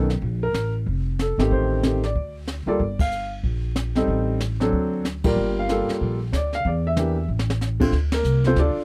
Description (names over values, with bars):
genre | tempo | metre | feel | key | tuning
jazz piano trio | 187 BPM | 4/4 | swing 62% on 8ths | G minor | A4 = 440 Hz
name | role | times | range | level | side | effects
warm upright piano | melody | 0.0-8.8 s | D3 to F5 | -25 LUFS | equal | none
upright bass | bass | 0.0-8.8 s | F1 to E2 | -26 LUFS | equal | none
jazz brush drum kit | drums | 0.1-8.8 s | brushed snare drum, crash cymbal, hi-hat, kick drum, ride cymbal, snare drum | -30 LUFS | equal | none
room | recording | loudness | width
little or no reverb | dry, close 1970s-style studio recording | -23 LUFS | mono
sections
0.0-7.9 A section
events
band accent 3.0, 5.2, 8.1; drum fill 7.3-7.6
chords
0.2 Bb5; 1.5 Am7b5; 2.2 D5; 2.8 Gm7; 4.1 Am7b5; 4.7 D7; 5.4 Gm9; 6.6 Em7b5; 7.3 N.C.; 7.9 Dm7